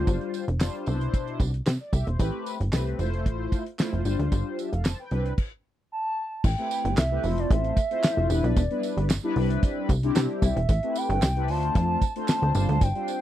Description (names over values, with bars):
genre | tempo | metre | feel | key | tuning
early-eighties boogie funk | 113 BPM | 4/4 | straight | unclear | A4 = 440 Hz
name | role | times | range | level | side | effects
mellow synth brass | accompaniment | 0.0-13.2 s | B2 to A5 | -30 LUFS | left 3 dB | chorus, phaser
plucky analog bass | bass | 0.0-12.9 s | E1 to C3 | -25 LUFS | equal | none
damped 70s drum kit | drums | 0.1-13.2 s | crash cymbal, handclaps, hi-hat, kick drum, snare drum | -24 LUFS | equal | none
tambourine | percussion | 0.1-13.2 s | none | -41 LUFS | right 22 dB | none
hollow clarinet-like synth lead | melody | 5.9-13.2 s | D5 to A5 | -28 LUFS | right 1 dB | chorus, slapback echo
room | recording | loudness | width
little or no reverb | dry, close 1970s-style studio recording | -23 LUFS | side -12 dB against mid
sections
0.0-6.4 A section; 6.4-13.2 B section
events
stop 5.4-6.4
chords
0.0 G7sus4; 0.9 Cmaj9; 2.2 Am9; 3.0 Fmaj7; 4.1 G7sus4; 5.1 Cmaj9; 6.4 Am9; 7.2 Fmaj7; 8.3 Em7; 9.4 Cmaj9; 10.7 Am9; 11.5 Dm7; 12.5 G7sus4